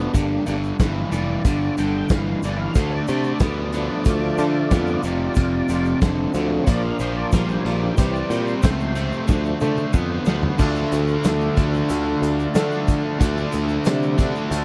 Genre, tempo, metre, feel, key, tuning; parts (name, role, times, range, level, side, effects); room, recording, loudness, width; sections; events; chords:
classic rock; 92 BPM; 4/4; straight; A4 = 440 Hz
tonewheel organ; sustained chords; 0.0-14.6 s; E3 to G5; -30 LUFS; equal; slow rotary speaker, overdrive, chorus vibrato
crunchy overdriven guitar; riff; 0.0-14.6 s; F2 to D4; -26 LUFS; equal
picked electric bass; bass; 0.0-14.6 s; F1 to D3; -27 LUFS; equal
raw garage drum kit; drums; 0.1-14.6 s; crash cymbal, hi-hat, kick drum, snare drum, toms; -25 LUFS; equal
tube shaker; percussion; 0.1-14.6 s; -45 LUFS; equal
overdriven electric guitar; riff; 10.6-14.6 s; D3 to D4; -28 LUFS; equal
light reverb; dry, close 1970s-style studio recording; -21 LUFS; mono
0.0-10.6 A section; 10.6-14.6 B section
tonewheel organ solo 0.0-10.6; drum fill 9.3-10.6
0.1 Gm; 2.8 Dm; 5.0 F; 6.7 Bb; 8.0 C; 9.3 Dm